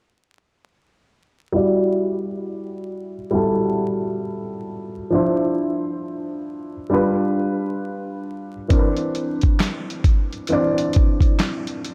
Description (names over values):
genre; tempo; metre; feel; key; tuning
lo-fi hip hop; 67 BPM; 4/4; swing 62% on 16ths; E minor; A4 = 441 Hz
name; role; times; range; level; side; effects
dark upright piano; accompaniment; 1.5-11.9 s; E3 to D5; -24 LUFS; equal; cassette tape, low-pass filter
lo-fi sampler-style drum kit; drums; 8.7-11.9 s; handclaps, hi-hat, kick drum, snare drum; -20 LUFS; equal; none
room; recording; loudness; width
wet plate reverb, RT60 2.8 s; dreamy mix soaked in reverb, vinyl crackle; -21 LUFS; mono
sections
1.5-11.9 A section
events
filter sweep on upright piano 1.5-11.9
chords
1.5 Em9; 5.1 Dm9; 6.9 G7; 8.7 Cmaj9